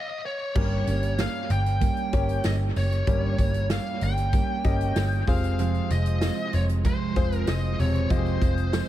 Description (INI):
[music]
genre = piano-driven pop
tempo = 95 BPM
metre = 4/4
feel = straight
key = unclear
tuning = A4 = 440 Hz
[part]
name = bluesy overdriven lead guitar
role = melody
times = 0.0-8.9 s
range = C5 to G5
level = -31 LUFS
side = left 1 dB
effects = distortion, dub echo
[part]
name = fingerpicked steel-string acoustic guitar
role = riff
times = 0.5-8.9 s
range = F2 to G4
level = -31 LUFS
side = right 7 dB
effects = dub echo
[part]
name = clear concert grand piano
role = accompaniment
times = 0.6-8.9 s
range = G2 to Eb5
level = -32 LUFS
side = left 3 dB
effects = dub echo
[part]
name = vintage muted picked electric bass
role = bass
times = 0.6-8.8 s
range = E1 to G1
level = -25 LUFS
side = equal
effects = none
[part]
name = natural country drum kit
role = drums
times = 0.6-8.9 s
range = crash cymbal, hi-hat, kick drum, snare drum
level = -27 LUFS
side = equal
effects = none
[part]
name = tambourine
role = percussion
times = 0.9-8.9 s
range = none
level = -51 LUFS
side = left 9 dB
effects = none
[sound]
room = light reverb, studio reverb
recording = echo-heavy mix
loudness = -22 LUFS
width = side -13 dB against mid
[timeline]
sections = 0.6-8.9 A section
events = stop 0.0-0.6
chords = 0.0 N.C.; 0.6 Gdim; 5.3 Fm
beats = | 0.56 1.19 1.82 2.45 | 3.08 3.70 4.33 4.96 | 5.59 6.22 6.85 7.48 | 8.11 8.73